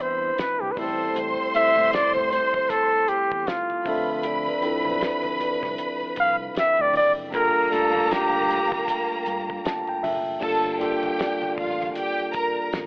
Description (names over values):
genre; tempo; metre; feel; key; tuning
lush 1970s-style soul; 78 BPM; 4/4; swing 58% on 16ths; unclear; A4 = 440 Hz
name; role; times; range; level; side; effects
breathy flugelhorn; melody; 0.0-8.9 s; F4 to F5; -21 LUFS; equal; none
warm symphonic violin section; second line; 0.0-12.7 s; Bb3 to C6; -27 LUFS; equal; none
mellow tine electric piano; accompaniment; 0.0-12.9 s; F3 to A5; -28 LUFS; equal; none
fingered electric bass; bass; 0.0-12.9 s; F#1 to A2; -39 LUFS; equal; none
vibraphone with medium hard mallets; texture; 0.0-12.8 s; D5 to G5; -36 LUFS; equal; none
cloth-damped thuddy drum kit; drums; 0.4-12.9 s; crash cymbal, hi-hat, kick drum, snare drum; -33 LUFS; equal; none
congas; percussion; 0.4-12.9 s; none; -44 LUFS; right 1 dB; none
room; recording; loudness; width
moderate plate reverb, RT60 3.3 s; telephone sound; -21 LUFS; side -27 dB against mid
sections
0.0-10.4 A section; 10.4-12.9 B section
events
flugelhorn solo 0.0-10.4; tine electric piano fill 9.3-10.4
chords
0.0 Cmaj9; 0.8 Am7; 3.9 Dm9; 7.3 Gm9